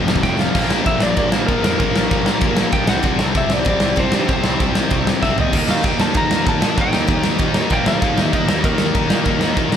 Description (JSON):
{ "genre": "punk rock", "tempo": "193 BPM", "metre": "4/4", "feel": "straight", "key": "unclear", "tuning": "A4 = 440 Hz", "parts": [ { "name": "cranked stack guitar", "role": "riff", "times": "0.0-9.8 s", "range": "F2 to Eb4", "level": "-23 LUFS", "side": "left 7 dB", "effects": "overdrive" }, { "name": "sludgy distorted guitar", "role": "riff", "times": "0.0-9.8 s", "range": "F2 to Eb4", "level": "-24 LUFS", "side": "right 5 dB", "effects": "overdrive" }, { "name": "tight distorted guitar", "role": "riff", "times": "0.0-9.8 s", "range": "F2 to Eb4", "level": "-25 LUFS", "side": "left 1 dB", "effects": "distortion" }, { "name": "fuzz picked electric bass", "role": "bass", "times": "0.0-9.8 s", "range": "F1 to Bb2", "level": "-25 LUFS", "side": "right 1 dB", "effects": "overdrive" }, { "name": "big rock drum kit", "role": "drums", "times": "0.1-9.8 s", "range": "crash cymbal, kick drum, ride cymbal, snare drum, toms", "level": "-18 LUFS", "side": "equal", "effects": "none" }, { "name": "lightly driven lead guitar", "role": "melody", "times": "0.2-9.8 s", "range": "Bb4 to Bb5", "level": "-23 LUFS", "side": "left 1 dB", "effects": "none" } ], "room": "light reverb", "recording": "band playing live in one room", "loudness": "-15 LUFS", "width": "side -8 dB against mid", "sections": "0.5-9.8 A section", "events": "drum fill 0.2-0.5, 5.2-5.5", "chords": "0.0 F5; 0.5 Bb5; 2.9 C5; 5.5 Eb; 7.7 Bb5; 8.0 Eb5" }